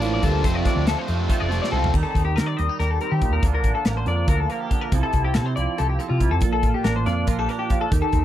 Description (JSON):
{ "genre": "math rock and midwest emo", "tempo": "280 BPM (eighths)", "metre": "7/8", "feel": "straight", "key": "unclear", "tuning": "A4 = 436 Hz", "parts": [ { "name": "twangy electric guitar", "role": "accompaniment", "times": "0.0-8.2 s", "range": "F2 to A4", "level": "-27 LUFS", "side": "right 8 dB", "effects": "ensemble chorus" }, { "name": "clean electric guitar", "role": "arpeggios", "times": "0.0-8.2 s", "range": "F4 to Eb5", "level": "-26 LUFS", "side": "left 8 dB", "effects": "analog chorus" }, { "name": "biting overdriven guitar", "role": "riff", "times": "0.0-1.9 s", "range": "F2 to D4", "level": "-26 LUFS", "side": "right 1 dB", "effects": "none" }, { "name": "hollow-body short-scale fingered electric bass", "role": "bass", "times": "0.0-8.2 s", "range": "F1 to Eb3", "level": "-23 LUFS", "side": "equal", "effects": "none" }, { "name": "modern studio drum kit", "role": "drums", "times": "0.0-8.2 s", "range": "crash cymbal, hi-hat, kick drum, snare drum, toms", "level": "-23 LUFS", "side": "equal", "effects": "none" } ], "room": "little or no reverb", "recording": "dry, close 1970s-style studio recording", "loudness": "-19 LUFS", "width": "side -12 dB against mid", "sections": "0.0-1.9 A section; 1.9-8.2 B section", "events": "drum fill 1.6-1.9", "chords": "0.4 F6; 1.9 Eb6; 3.4 Bbmaj7; 4.9 Fmaj7/C; 6.4 Bbmaj7" }